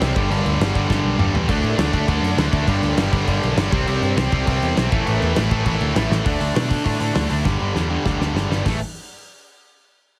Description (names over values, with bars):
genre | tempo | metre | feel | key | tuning
punk rock | 201 BPM | 4/4 | straight | unclear | A4 = 439 Hz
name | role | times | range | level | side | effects
distorted electric guitar | riff | 0.0-8.8 s | G2 to D4 | -26 LUFS | equal | distortion
scooped high-gain guitar | riff | 0.0-6.1 s | G2 to D4 | -30 LUFS | equal | distortion
tight distorted guitar | riff | 0.0-8.8 s | G2 to D4 | -28 LUFS | equal | distortion
picked electric bass | bass | 0.0-8.8 s | G1 to B2 | -25 LUFS | equal | none
loose indie drum kit | drums | 0.0-8.7 s | crash cymbal, hi-hat, kick drum, snare drum, toms | -26 LUFS | equal | none
room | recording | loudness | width
light reverb | heavily compressed radio sound | -20 LUFS | mono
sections
0.0-6.3 A section; 6.3-8.7 B section; 8.7-9.9 C section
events
drum fill 0.9-1.5, 6.1, 7.5-8.7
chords
0.2 G5; 1.5 D5; 2.7 G5; 3.7 C5; 4.9 A5; 6.3 D5; 7.5 G5; 8.7 A5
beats
0.01 | 0.31 0.60 0.90 1.20 | 1.49 1.79 2.09 2.38 | 2.68 2.98 3.27 3.57 | 3.87 4.17 4.46 4.76 | 5.06 5.36 5.66 5.96 | 6.26 6.56 6.86 7.16 | 7.46 7.76 8.06 8.36 | 8.66